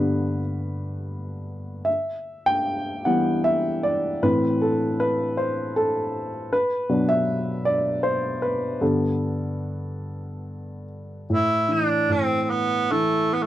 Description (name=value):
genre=celtic folk, Celtic slow air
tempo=70-81 BPM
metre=3/4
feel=rubato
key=A dorian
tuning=A4 = 438 Hz
part: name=dark upright piano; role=accompaniment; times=0.0-13.5 s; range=G2 to G5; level=-22 LUFS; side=equal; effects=none
part: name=clear tenor saxophone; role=melody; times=11.3-13.5 s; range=A3 to E4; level=-21 LUFS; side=right 2 dB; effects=none
room=little or no reverb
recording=dry, close 1970s-style studio recording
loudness=-21 LUFS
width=side -13 dB against mid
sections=0.0-11.3 A section; 11.3-13.5 B section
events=upright piano solo 0.0-11.3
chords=0.0 G; 1.9 Em; 4.2 Am; 6.5 Bm; 8.8 Gadd9; 11.3 A5